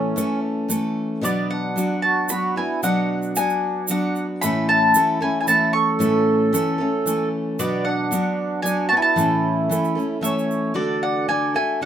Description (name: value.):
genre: acoustic folk duo or small band.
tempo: 113 BPM.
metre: 3/4.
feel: straight.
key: A major.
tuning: A4 = 441 Hz.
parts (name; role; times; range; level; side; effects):
mandolin; melody; 0.0-11.9 s; D5 to C#6; -21 LUFS; left 1 dB; none.
mellow accordion; second line; 0.0-11.8 s; B3 to E5; -25 LUFS; right 5 dB; none.
picked steel-string acoustic guitar; accompaniment; 0.0-11.9 s; A2 to A4; -22 LUFS; left 1 dB; none.
egg shaker; percussion; 0.2-10.6 s; none; -28 LUFS; right 4 dB; none.
room: light reverb.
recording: minimal, uncompressed stereo recording.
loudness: -18 LUFS.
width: side -9 dB against mid.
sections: 0.0-10.8 A section; 10.8-11.9 B section.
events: none.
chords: 0.0 A; 1.2 Bm; 4.4 A; 7.6 Bm; 9.2 A; 10.8 D.